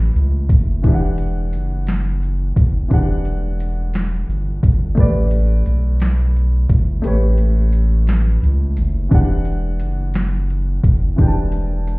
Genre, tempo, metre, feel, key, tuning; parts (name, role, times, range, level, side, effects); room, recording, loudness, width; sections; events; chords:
slow six-eight R&B; 58 BPM (dotted quarters); 6/8; straight; E dorian; A4 = 440 Hz
warm baby grand piano; accompaniment; 0.0-12.0 s; E3 to A5; -24 LUFS; equal
round analog bass; bass; 0.0-12.0 s; E1 to C#2; -17 LUFS; equal
smooth R&B drum kit; drums; 0.2-12.0 s; hi-hat, kick drum, snare drum; -15 LUFS; equal
little or no reverb; heard muffled through a wall, stone room reverb, EQ; -15 LUFS; side -24 dB against mid
0.0-9.1 A section; 9.1-12.0 A section
kick muted 7.0-9.1
0.0 A9sus4; 0.8 Em9; 5.0 A9sus4; 9.1 Em9